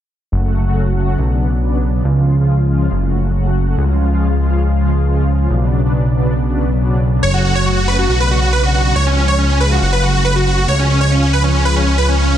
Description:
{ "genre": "trance", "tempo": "139 BPM", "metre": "4/4", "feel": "straight", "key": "F# harmonic minor", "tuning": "A4 = 440 Hz", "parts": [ { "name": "fat analog bass", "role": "bass", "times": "0.3-12.4 s", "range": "F#1 to C#2", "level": "-15 LUFS", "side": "equal", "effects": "tube saturation" }, { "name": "supersaw chords", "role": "melody", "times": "7.2-12.4 s", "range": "C#4 to C#5", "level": "-15 LUFS", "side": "right 1 dB", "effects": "analog chorus, vintage 12-bit sampler grit, ping-pong delay" } ], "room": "light reverb, digital ambience", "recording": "dense, heavily limited modern master", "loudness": "-12 LUFS", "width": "side -10 dB against mid", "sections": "0.3-12.4 A section", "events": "none", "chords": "0.3 F#m; 1.2 Bmadd9; 2.0 C#; 2.9 F#m; 3.8 C#; 5.5 Bmadd9; 7.2 F#m; 8.1 Bmadd9; 9.0 C#; 9.8 F#m; 10.7 C#", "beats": "| 0.32 0.75 1.19 1.62 | 2.05 2.48 2.91 3.34 | 3.78 4.21 4.64 5.07 | 5.50 5.93 6.37 6.80 | 7.23 7.66 8.09 8.52 | 8.96 9.39 9.82 10.25 | 10.68 11.11 11.55 11.98" }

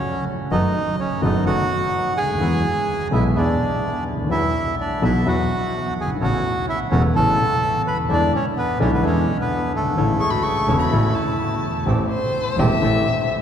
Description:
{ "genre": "tango", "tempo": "127 BPM", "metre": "4/4", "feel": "rubato", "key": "A major", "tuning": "A4 = 437 Hz", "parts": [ { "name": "bandoneon", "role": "melody", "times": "0.0-11.4 s", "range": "A3 to B5", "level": "-23 LUFS", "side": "right 1 dB", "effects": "none" }, { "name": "dark grand piano", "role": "accompaniment", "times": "0.5-13.0 s", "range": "E1 to G#4", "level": "-22 LUFS", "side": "left 2 dB", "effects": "none" }, { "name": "bandoneon", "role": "stabs", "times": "0.5-13.0 s", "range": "F#3 to G4", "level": "-31 LUFS", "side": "right 3 dB", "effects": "none" }, { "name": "clear double bass", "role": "bass", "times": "0.5-13.0 s", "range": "E1 to E2", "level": "-24 LUFS", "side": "right 2 dB", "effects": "none" }, { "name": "dark violin", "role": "second line", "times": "10.2-13.3 s", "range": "C5 to C#6", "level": "-24 LUFS", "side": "left 4 dB", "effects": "none" }, { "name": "warm clarinet", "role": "second line", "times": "10.2-11.8 s", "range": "E4 to G#4", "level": "-31 LUFS", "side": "equal", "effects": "none" } ], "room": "wet cathedral reverb, RT60 6.2 s", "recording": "recorded in a church or concert hall", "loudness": "-18 LUFS", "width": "side -8 dB against mid", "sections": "0.0-11.9 A section; 11.9-13.4 B section", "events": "violin solo 11.9-13.4", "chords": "0.0 N.C.; 0.5 B7/F#; 2.4 E; 4.3 Esus2; 6.2 Aadd9; 8.1 E7; 10.0 A; 11.9 Am7", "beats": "0.05 | 0.52 0.99 1.46 1.94 | 2.41 2.88 3.36 3.83 | 4.31 4.79 5.26 5.73 | 6.21 6.68 7.15 7.62 | 8.09 8.56 9.03 9.50 | 9.97 10.44 10.91 11.39 | 11.87 12.35 12.82 13.30" }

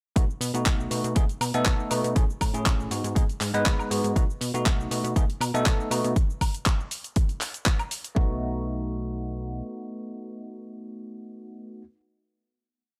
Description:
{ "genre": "filtered disco house", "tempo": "120 BPM", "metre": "4/4", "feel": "swing 53% on 16ths", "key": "B mixolydian", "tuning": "A4 = 440 Hz", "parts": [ { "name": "bell-like tine electric piano", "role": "accompaniment", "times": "0.2-11.8 s", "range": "G#3 to B4", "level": "-32 LUFS", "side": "equal", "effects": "phaser, sidechain pumping" }, { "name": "plucky analog bass", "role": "bass", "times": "0.2-9.6 s", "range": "G#1 to B2", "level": "-33 LUFS", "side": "equal", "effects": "tube saturation, sidechain pumping" }, { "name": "electronic kick drum", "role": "drums", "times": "0.2-8.3 s", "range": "none", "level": "-26 LUFS", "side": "equal", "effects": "none" }, { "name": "house drum kit", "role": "drums", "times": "0.2-8.1 s", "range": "cabasa, handclaps, hi-hat, woodblock", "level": "-32 LUFS", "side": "equal", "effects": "sidechain pumping on hats, sidechain pumping on perc" } ], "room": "little or no reverb", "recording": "dry, gritty hardware recording", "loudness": "-26 LUFS", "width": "mono", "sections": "0.2-8.2 drop; 8.2-12.2 final chord", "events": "drop 0.2-8.2", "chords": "0.2 B7; 2.2 Amaj7; 2.9 G#m7; 4.2 B7; 6.2 N.C.; 8.2 B7", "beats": "| 0.16 0.66 1.16 1.66 | 2.16 2.66 3.16 3.66 | 4.16 4.66 5.16 5.66 | 6.16 6.66 7.16 7.66 | 8.16 8.66 9.16 9.66 | 10.16 10.66 11.16 11.66" }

